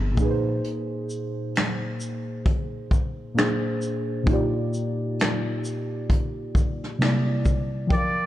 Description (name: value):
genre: lo-fi hip hop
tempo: 66 BPM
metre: 4/4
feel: swing 57% on 16ths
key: unclear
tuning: A4 = 440 Hz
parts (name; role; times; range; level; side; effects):
- muted felt-like synth keys; accompaniment; 0.0-8.3 s; Bb2 to G5; -26 LUFS; equal; chorus, cassette tape
- upright bass; bass; 0.0-0.6 s; G1 to Bb1; -26 LUFS; equal; none
- vintage brush drum kit; drums; 0.2-8.2 s; finger snaps, hi-hat, kick drum, shaker, snare drum; -24 LUFS; equal; none
- trumpet with straight mute; melody; 7.9-8.3 s; D5; -24 LUFS; right 1 dB; none
room: light reverb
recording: dark, warm production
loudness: -23 LUFS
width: side -14 dB against mid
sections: 0.0-7.9 A section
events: break 0.6-7.9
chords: 0.2 Bb9sus4; 3.4 Bb9; 4.3 Ebmaj9/Bb; 7.0 C9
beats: | 0.63 1.54 2.45 3.36 | 4.27 5.18 6.09 7.00 | 7.91